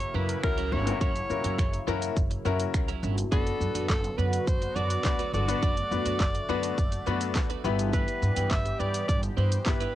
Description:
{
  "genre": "dance-pop",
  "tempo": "104 BPM",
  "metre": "4/4",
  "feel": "straight",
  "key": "unclear",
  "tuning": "A4 = 438 Hz",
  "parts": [
    { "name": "bright alto saxophone", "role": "melody", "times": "0.0-9.9 s", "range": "A4 to E5", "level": "-32 LUFS", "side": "right 1 dB", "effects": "cassette tape" },
    { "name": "sweeping resonant pad", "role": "sustained chords", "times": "0.0-9.9 s", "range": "C#3 to G4", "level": "-36 LUFS", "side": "equal", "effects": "chorus, sidechain pumping, cassette tape" },
    { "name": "twelve-string electric guitar", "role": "riff", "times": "0.0-9.9 s", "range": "F#3 to B4", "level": "-38 LUFS", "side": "right 12 dB", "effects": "wide subtle chorus, cassette tape" },
    { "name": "upright bass", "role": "bass", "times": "0.0-9.9 s", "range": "F#1 to G2", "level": "-30 LUFS", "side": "equal", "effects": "sidechain pumping" },
    { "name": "pop drum kit", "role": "drums", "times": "0.0-9.9 s", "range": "finger snaps, handclaps, hi-hat, kick drum, shaker, snare drum", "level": "-28 LUFS", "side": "equal", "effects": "cassette tape" },
    { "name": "clear baby grand piano", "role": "accompaniment", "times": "0.4-9.8 s", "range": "B3 to B4", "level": "-32 LUFS", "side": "left 10 dB", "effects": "sidechain pumping, cassette tape" }
  ],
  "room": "light reverb",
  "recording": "home recording on cassette",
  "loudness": "-25 LUFS",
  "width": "side -13 dB against mid",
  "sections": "0.0-9.9 A section",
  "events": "none",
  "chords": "0.0 F#7; 3.3 Bm/F#; 7.6 Em/G"
}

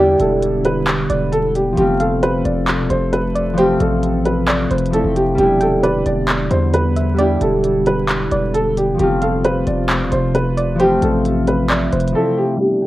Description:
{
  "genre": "hip hop, trap",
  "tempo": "133 BPM",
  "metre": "4/4",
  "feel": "half-time",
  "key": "unclear",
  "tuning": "A4 = 439 Hz",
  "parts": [
    { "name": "dark grand piano", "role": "melody", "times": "0.0-12.9 s", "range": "G4 to D5", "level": "-19 LUFS", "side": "equal", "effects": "plate reverb, analog delay" },
    { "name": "soft round pluck", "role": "second line", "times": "0.0-12.9 s", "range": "C5 to G5", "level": "-25 LUFS", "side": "right 2 dB", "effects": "chorus, plate reverb, analog delay" },
    { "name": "concert harp", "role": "accompaniment", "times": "0.0-12.9 s", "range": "F3 to F4", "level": "-20 LUFS", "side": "left 1 dB", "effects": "plate reverb" },
    { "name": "warbly tape-like pad", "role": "sustained chords", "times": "0.0-12.9 s", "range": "B2 to E5", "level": "-23 LUFS", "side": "equal", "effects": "chorus, built-in reverb, plate reverb" },
    { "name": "distorted 808-style bass", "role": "bass", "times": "0.0-12.1 s", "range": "E1 to E2", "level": "-21 LUFS", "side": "equal", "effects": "distortion" },
    { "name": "trap drum kit", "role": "drums", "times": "0.2-12.1 s", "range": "handclaps, hi-hat", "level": "-22 LUFS", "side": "equal", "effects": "none" }
  ],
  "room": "moderate small room reverb, RT60 0.5 s",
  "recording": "worn, warbling old tape, cassette tape, vinyl crackle, warbly pitch drift, low-pass filter",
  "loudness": "-14 LUFS",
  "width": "side -16 dB against mid",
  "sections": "0.0-12.6 A section",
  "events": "drums muted 12.2-12.6",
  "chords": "0.0 Em7; 1.8 F; 5.4 Em7; 9.0 F"
}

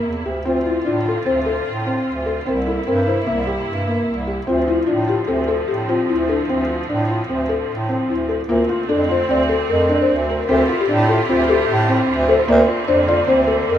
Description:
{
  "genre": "contemporary instrumental, chamber music in an uneven meter",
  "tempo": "150 BPM",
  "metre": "5/4",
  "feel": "straight",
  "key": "D minor",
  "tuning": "A4 = 441 Hz",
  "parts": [
    { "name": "bright symphonic string section", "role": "sustained chords", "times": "0.0-13.8 s", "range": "C3 to G4", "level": "-25 LUFS", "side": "right 2 dB", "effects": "none" },
    { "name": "felt-muted upright piano", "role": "arpeggios", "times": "0.0-13.7 s", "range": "Bb3 to Bb4", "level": "-21 LUFS", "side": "left 1 dB", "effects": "none" },
    { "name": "clear bass clarinet", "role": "bass", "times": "0.1-13.8 s", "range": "C2 to A2", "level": "-22 LUFS", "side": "right 1 dB", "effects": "none" },
    { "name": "buzzing marimba with soft mallets", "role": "melody", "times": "0.5-13.8 s", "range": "D4 to E5", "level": "-20 LUFS", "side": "left 3 dB", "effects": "none" }
  ],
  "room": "moderate recital hall reverb, RT60 1.6 s",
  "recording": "minimal, uncompressed stereo recording",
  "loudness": "-16 LUFS",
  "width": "side -10 dB against mid",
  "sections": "0.0-8.5 A section; 8.5-13.8 B section",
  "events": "none",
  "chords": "0.5 Dm7; 2.5 C7; 4.5 Dm7; 8.5 Bbmaj7/D (rootless); 10.5 Dm11; 12.5 Bbmaj7/D"
}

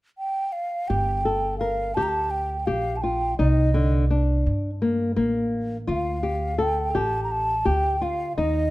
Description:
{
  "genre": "contemporary instrumental, chamber music in an uneven meter",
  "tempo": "168 BPM (eighths)",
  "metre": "7/8",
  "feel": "straight",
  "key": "G minor",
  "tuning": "A4 = 440 Hz",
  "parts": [
    { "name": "mellow hollow concert flute", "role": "melody", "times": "0.2-8.7 s", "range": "Eb5 to Bb5", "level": "-26 LUFS", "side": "right 1 dB", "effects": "none" },
    { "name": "flamenco guitar", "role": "arpeggios", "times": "0.9-8.7 s", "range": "D3 to Bb4", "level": "-25 LUFS", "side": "left 2 dB", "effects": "none" },
    { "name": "upright bass", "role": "bass", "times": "0.9-8.7 s", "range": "G1 to G2", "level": "-25 LUFS", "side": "right 1 dB", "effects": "none" }
  ],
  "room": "light reverb",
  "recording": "close, detailed microphones",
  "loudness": "-21 LUFS",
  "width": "side -18 dB against mid",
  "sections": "0.9-8.7 A section",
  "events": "none",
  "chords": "0.0 N.C.; 0.9 Gm7; 3.4 Cm9; 5.9 Dm"
}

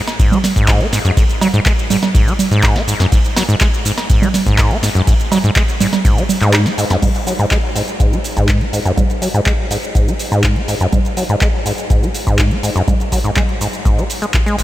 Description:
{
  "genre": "acid house",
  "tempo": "123 BPM",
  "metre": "4/4",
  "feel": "straight",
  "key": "G# minor",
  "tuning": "A4 = 441 Hz",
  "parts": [
    { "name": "booming analog drum machine", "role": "drums", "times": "0.1-14.6 s", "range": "congas, cowbell, crash cymbal, handclaps, hi-hat, ride cymbal, shaker, snare drum", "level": "-18 LUFS", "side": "right 3 dB", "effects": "small room reverb" },
    { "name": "acid bass, saw", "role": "riff", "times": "0.2-14.6 s", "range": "G#1 to B3", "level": "-16 LUFS", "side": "equal", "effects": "overdrive, ping-pong delay" },
    { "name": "electronic kick drum", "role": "drums", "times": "0.2-14.4 s", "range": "none", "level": "-15 LUFS", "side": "equal", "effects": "small room reverb" }
  ],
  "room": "light reverb",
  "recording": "none",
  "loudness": "-12 LUFS",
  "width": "side -14 dB against mid",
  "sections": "0.0-7.0 A section; 7.0-14.6 B section",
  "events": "drop 0.0-7.0; kick drops out 6.5-7.0; filter sweep on acid bass 7.0-14.6",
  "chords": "none"
}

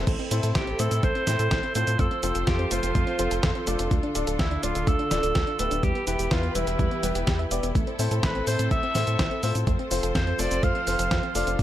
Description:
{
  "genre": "italo disco",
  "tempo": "125 BPM",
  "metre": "4/4",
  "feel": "straight",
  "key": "A minor",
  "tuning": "A4 = 440 Hz",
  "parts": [
    { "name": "rich studio string section", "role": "sustained chords", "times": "0.0-11.6 s", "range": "D3 to C5", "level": "-32 LUFS", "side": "right 1 dB", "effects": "none" },
    { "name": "clear concert grand piano", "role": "stabs", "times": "0.0-11.6 s", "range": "B3 to E5", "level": "-32 LUFS", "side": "left 5 dB", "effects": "none" },
    { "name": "round analog bass", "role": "bass", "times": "0.0-11.6 s", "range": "D1 to A2", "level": "-28 LUFS", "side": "equal", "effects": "none" },
    { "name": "soft round pluck", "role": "arpeggios", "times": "0.1-11.6 s", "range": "G3 to E5", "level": "-34 LUFS", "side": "right 4 dB", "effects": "chorus, digital delay" },
    { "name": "detuned 8-bit digital drum machine", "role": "drums", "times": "0.1-11.6 s", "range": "cabasa, crash cymbal, hi-hat, snare drum", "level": "-30 LUFS", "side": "equal", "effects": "none" },
    { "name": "electronic kick drum", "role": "drums", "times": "0.1-11.6 s", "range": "none", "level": "-26 LUFS", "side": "equal", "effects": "none" },
    { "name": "bright alto saxophone", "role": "melody", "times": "0.6-11.6 s", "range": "E4 to F5", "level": "-29 LUFS", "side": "right 1 dB", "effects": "ping-pong delay" }
  ],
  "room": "light reverb",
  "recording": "none",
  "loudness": "-22 LUFS",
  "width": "side -12 dB against mid",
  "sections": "0.1-11.6 A section",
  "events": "none",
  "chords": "0.1 Am; 2.0 F; 3.9 Dm; 5.8 Em; 7.8 Am; 9.7 F"
}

